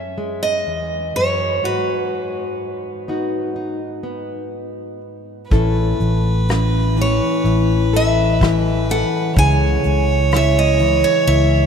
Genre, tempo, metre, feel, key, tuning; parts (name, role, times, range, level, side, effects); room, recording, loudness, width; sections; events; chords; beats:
folk; 62 BPM; 4/4; straight; A4 = 440 Hz
picked steel-string acoustic guitar; melody; 0.0-11.7 s; B4 to G#5; -21 LUFS; right 1 dB
nylon-string guitar; accompaniment; 0.0-11.7 s; E2 to A4; -22 LUFS; left 4 dB
rich violin; second line; 5.5-11.7 s; B4 to C#5; -22 LUFS; right 8 dB
fingered electric bass; bass; 5.5-11.7 s; A1 to C#2; -17 LUFS; equal
soft brush drum kit; drums; 5.5-11.5 s; hi-hat, kick drum, rim click; -22 LUFS; equal
vibraphone with soft mallets; arpeggios; 6.5-7.6 s; C#4; -27 LUFS; right 1 dB
wet cathedral reverb, RT60 5.2 s; in a vast, echoing space; -15 LUFS; side -7 dB against mid
0.0-5.5 A section; 5.5-11.7 B section
0.0 F#sus2; 1.6 G#m7; 5.5 Aadd9; 9.4 C#m
0.67 | 1.63 2.60 3.57 4.54 | 5.52 6.49 7.45 8.41 | 9.37 10.32 11.27